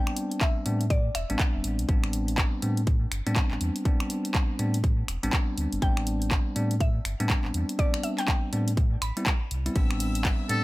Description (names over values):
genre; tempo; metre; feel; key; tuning
deep house; 122 BPM; 4/4; swing 61% on 16ths; A minor; A4 = 439 Hz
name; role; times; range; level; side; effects
mallet-like synth pluck; melody; 0.0-1.6, 5.8-9.7 s; D5 to B5; -35 LUFS; left 1 dB; chorus, dub echo
bell-like tine electric piano; stabs; 0.0-10.6 s; G3 to E4; -31 LUFS; equal; sidechain pumping, dub echo
punchy analog drum machine; drums; 0.1-10.6 s; finger snaps, handclaps, hi-hat, ride cymbal; -32 LUFS; equal; none
electronic kick drum; drums; 0.4-10.4 s; none; -25 LUFS; equal; none
sub bass with octave; bass; 0.7-10.6 s; E1 to A2; -29 LUFS; equal; tube saturation, sidechain pumping
rich chamber violin section; texture; 9.8-10.6 s; E5 to E6; -39 LUFS; left 4 dB; none
trumpet with metal mute; melody; 10.5-10.6 s; A4; -26 LUFS; equal; none
room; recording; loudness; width
little or no reverb; none; -24 LUFS; side -19 dB against mid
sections
0.0-10.6 A section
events
none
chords
0.0 Am11